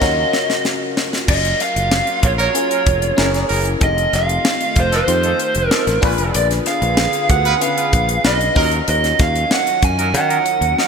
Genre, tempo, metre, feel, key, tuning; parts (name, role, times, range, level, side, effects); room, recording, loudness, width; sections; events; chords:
polished 1980s jazz-funk pop; 95 BPM; 4/4; straight; F# major; A4 = 439 Hz
lead guitar through a small cranked amp; melody; 0.0-10.9 s; C5 to G#5; -18 LUFS; right 2 dB; overdrive
FM electric piano; accompaniment; 0.0-10.9 s; D3 to C5; -25 LUFS; left 6 dB; lush chorus
warm studio string section; sustained chords; 0.0-10.9 s; C#3 to G#4; -28 LUFS; right 2 dB
fingered electric bass; bass; 0.0-10.7 s; E#1 to D#3; -20 LUFS; equal
tight funk drum kit; drums; 0.0-10.9 s; crash cymbal, hi-hat, kick drum, snare drum; -19 LUFS; left 1 dB; gated reverb
warm horn section; second line; 2.4-10.9 s; E3 to B4; -25 LUFS; right 3 dB
moderate lush hall reverb, RT60 2.7 s; bright 1980s-style digital production; -14 LUFS; side -6 dB against mid
0.0-1.3 A section; 1.3-10.9 B section
drum fill 0.0-1.3; band accent 0.0-1.3
0.0 D#m9; 1.3 F#maj7; 3.2 F#9; 3.8 F7; 6.0 A#7b9; 8.6 D#m7